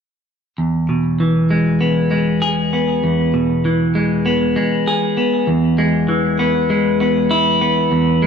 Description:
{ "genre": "rock", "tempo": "98 BPM", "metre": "4/4", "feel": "straight", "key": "E major", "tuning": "A4 = 436 Hz", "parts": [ { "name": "semi-hollow electric guitar", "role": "arpeggios", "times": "0.6-8.3 s", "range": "E2 to G#4", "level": "-14 LUFS", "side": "equal", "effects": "analog delay" } ], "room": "light reverb, digital ambience", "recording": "dark, warm production", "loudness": "-14 LUFS", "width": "side -7 dB against mid", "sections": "0.6-5.5 A section; 5.5-8.3 B section", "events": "none", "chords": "0.6 E" }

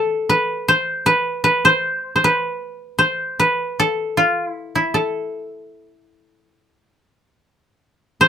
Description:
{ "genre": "japanese traditional, Japanese chamber music", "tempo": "70-79 BPM", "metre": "4/4", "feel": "rubato", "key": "A hirajoshi", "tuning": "A4 = 438 Hz", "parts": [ { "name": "koto", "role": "solo", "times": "0.0-8.3 s", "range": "E4 to C5", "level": "-16 LUFS", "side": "equal", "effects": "none" } ], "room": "light reverb", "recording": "close, detailed microphones", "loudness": "-16 LUFS", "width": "side -8 dB against mid", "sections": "0.0-8.2 A section", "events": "none", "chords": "none" }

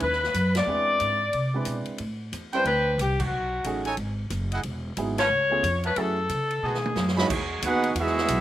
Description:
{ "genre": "jazz, big band swing", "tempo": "181 BPM", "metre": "4/4", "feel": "swing 62% on 8ths", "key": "E major", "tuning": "A4 = 440 Hz", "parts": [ { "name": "mellow saxophone section", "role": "melody", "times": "0.0-7.2 s", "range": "F#4 to D5", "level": "-25 LUFS", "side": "left 2 dB", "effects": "slapback echo" }, { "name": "upright bass", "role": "bass", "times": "0.0-8.4 s", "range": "E1 to C#3", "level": "-29 LUFS", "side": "equal", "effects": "none" }, { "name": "swinging big-band drum kit", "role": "drums", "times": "0.0-8.4 s", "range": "crash cymbal, hi-hat, kick drum, ride cymbal, snare drum, toms", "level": "-34 LUFS", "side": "right 1 dB", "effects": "none" }, { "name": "clear upright piano", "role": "accompaniment", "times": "0.7-7.3 s", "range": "F#3 to C#5", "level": "-31 LUFS", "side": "right 4 dB", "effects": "slapback echo" }, { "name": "clear trumpet section", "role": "stabs", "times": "2.5-7.3 s", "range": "D4 to B5", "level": "-30 LUFS", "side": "right 3 dB", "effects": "slapback echo" }, { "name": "clear trombone section", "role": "second line", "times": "6.6-8.4 s", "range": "A2 to F#4", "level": "-29 LUFS", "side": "right 4 dB", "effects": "slapback echo" }, { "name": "warm saxophone section", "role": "sustained chords", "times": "7.3-8.2 s", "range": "F#3 to G#4", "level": "-35 LUFS", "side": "right 1 dB", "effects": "none" }, { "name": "warm trumpet section", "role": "melody", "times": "7.7-8.4 s", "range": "B3 to F#5", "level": "-24 LUFS", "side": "right 2 dB", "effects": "none" } ], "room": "little or no reverb", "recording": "none", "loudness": "-23 LUFS", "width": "side -13 dB against mid", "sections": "0.0-7.3 A section; 7.3-8.4 B section", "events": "band accent 0.5, 3.2, 5.1; drum fill 6.6-7.3", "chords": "0.0 C#7sus2 (rootless); 0.7 E7b13; 2.0 Am11; 3.3 B13; 4.7 Emaj9; 5.3 C#7b13; 6.0 F#m7; 6.6 B7; 7.3 Emaj9" }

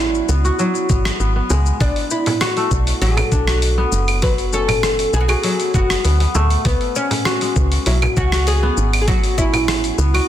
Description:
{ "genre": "organic downtempo", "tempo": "99 BPM", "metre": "4/4", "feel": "straight", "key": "B dorian", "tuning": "A4 = 440 Hz", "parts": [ { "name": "oud", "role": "melody", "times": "0.0-10.3 s", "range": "B3 to B4", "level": "-22 LUFS", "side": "equal", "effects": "tape echo" }, { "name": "kora", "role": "arpeggios", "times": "0.0-10.3 s", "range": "F#3 to F#4", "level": "-22 LUFS", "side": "left 1 dB", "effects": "low-pass filter, ping-pong delay" }, { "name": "woody FM bass", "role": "bass", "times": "0.0-10.2 s", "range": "F#1 to D2", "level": "-18 LUFS", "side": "equal", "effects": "sidechain pumping" }, { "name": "dusty soul sampler-style drum kit", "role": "drums", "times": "0.1-10.3 s", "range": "claves, hi-hat, rim click, shaker", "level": "-23 LUFS", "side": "equal", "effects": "soft clipping on snare" }, { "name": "electronic kick drum", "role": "drums", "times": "0.9-9.5 s", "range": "none", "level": "-19 LUFS", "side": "equal", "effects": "none" }, { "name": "frame drum", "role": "percussion", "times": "1.5-9.7 s", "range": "none", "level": "-26 LUFS", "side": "right 2 dB", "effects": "none" } ], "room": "light reverb", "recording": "dense, heavily limited modern master", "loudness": "-15 LUFS", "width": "side -11 dB against mid", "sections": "0.0-10.3 A section", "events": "none", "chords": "0.0 C#m7; 1.8 Bm7; 6.7 C#m7" }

